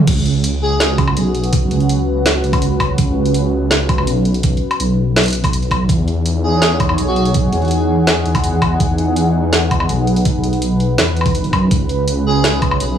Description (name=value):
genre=half-time drum and bass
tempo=165 BPM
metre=4/4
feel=half-time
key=unclear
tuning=A4 = 442 Hz
part: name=dark analog pad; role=sustained chords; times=0.1-13.0 s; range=C#4 to F#5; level=-21 LUFS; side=equal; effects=chorus, vintage 12-bit sampler grit, sidechain pumping
part: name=dark detuned saw bass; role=bass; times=0.1-13.0 s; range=B1 to F#2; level=-16 LUFS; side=equal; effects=none
part: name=drum and bass drum kit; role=drums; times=0.1-12.9 s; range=crash cymbal, hi-hat, snare drum, woodblock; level=-18 LUFS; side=equal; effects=overdrive
part: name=electronic kick drum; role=drums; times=0.1-12.7 s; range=none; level=-17 LUFS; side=right 1 dB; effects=overdrive
part: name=airy dreamy lead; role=melody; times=0.6-0.9, 6.4-7.2, 12.3-12.5 s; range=F#4 to G#4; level=-22 LUFS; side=left 1 dB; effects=chorus, tape echo
room=digital ambience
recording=dry, gritty hardware recording, studio reverb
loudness=-13 LUFS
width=side -9 dB against mid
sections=0.1-13.0 A section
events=drop 0.1-13.0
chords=0.1 Bsus2; 5.9 E; 11.7 C#m